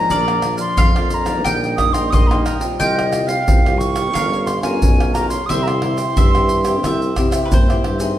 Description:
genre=samba and choro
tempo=89 BPM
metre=4/4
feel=straight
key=unclear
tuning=A4 = 439 Hz
part: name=bright wooden flute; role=melody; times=0.0-7.5 s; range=Eb5 to Eb6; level=-21 LUFS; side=right 1 dB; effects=none
part: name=mandolin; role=second line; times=0.0-8.2 s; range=B4 to G5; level=-25 LUFS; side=equal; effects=none
part: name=cavaquinho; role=accompaniment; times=0.0-8.2 s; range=D4 to G5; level=-28 LUFS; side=right 3 dB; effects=none
part: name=nylon-string guitar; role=accompaniment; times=0.0-8.2 s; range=G2 to Bb4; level=-25 LUFS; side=left 4 dB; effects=none
part: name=warm tuba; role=bass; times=0.1-8.2 s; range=G1 to C3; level=-22 LUFS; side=right 1 dB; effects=none
part: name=tube shaker, surdo, pandeiro and tamborim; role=percussion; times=0.1-8.2 s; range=none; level=-18 LUFS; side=equal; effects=none
room=wet large studio reverb, RT60 1.1 s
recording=band playing live in one room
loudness=-14 LUFS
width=side -12 dB against mid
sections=0.0-8.2 A section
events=none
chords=0.1 Bb; 1.4 Eb/Bb; 2.8 Csus4; 4.1 Gm7b5; 5.5 C

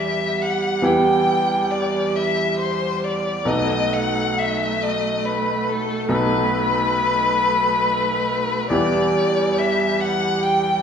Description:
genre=classical, slow romantic movement for piano quartet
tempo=46 BPM (dotted quarters)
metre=12/8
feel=rubato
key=E minor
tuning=A4 = 440 Hz
part: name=rich violin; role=melody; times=0.0-10.8 s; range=A4 to G5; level=-20 LUFS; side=left 2 dB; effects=none
part: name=bright grand piano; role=accompaniment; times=0.0-10.8 s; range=B1 to A4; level=-24 LUFS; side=equal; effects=none
part: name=clear viola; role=accompaniment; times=0.0-10.8 s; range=G3 to A3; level=-24 LUFS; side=right 3 dB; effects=none
room=wet recital hall reverb, RT60 1.3 s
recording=heard from further back in the room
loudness=-18 LUFS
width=side -7 dB against mid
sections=0.0-10.8 A section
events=none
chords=0.0 Em; 3.5 B7; 8.7 Em

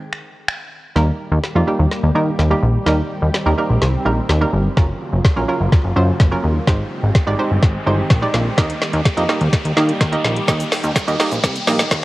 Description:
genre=dance-pop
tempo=126 BPM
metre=4/4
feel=straight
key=Eb major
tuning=A4 = 439 Hz
part: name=hollow square pluck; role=accompaniment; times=0.0-11.9 s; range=Eb3 to G5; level=-22 LUFS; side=right 2 dB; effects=chorus, sidechain pumping
part: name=smooth R&B drum kit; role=drums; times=0.1-12.0 s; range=finger snaps, hi-hat, kick drum, shaker, snare drum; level=-16 LUFS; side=equal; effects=none
part: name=lush unison pad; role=sustained chords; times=1.2-12.0 s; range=Db3 to G4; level=-26 LUFS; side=equal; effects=chorus, phaser, sidechain pumping
part: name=plucky analog bass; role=bass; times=1.0-12.0 s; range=Gb1 to Eb3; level=-18 LUFS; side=equal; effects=sidechain pumping
part: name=riser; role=sound effects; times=4.2-12.0 s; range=none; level=-30 LUFS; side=equal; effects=none
room=light reverb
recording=worn, warbling old tape, cassette tape, warbly pitch drift, high-pass filter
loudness=-15 LUFS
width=side -18 dB against mid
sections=1.0-12.0 A section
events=break 0.0-1.0; build-up 1.0-12.0; drum fill 1.0-12.0; filter sweep 1.0-12.0; riser 4.2-12.0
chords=0.0 Abmaj7; 1.0 Eb; 4.8 Gbmaj7; 6.7 Abmaj7; 8.6 Eb

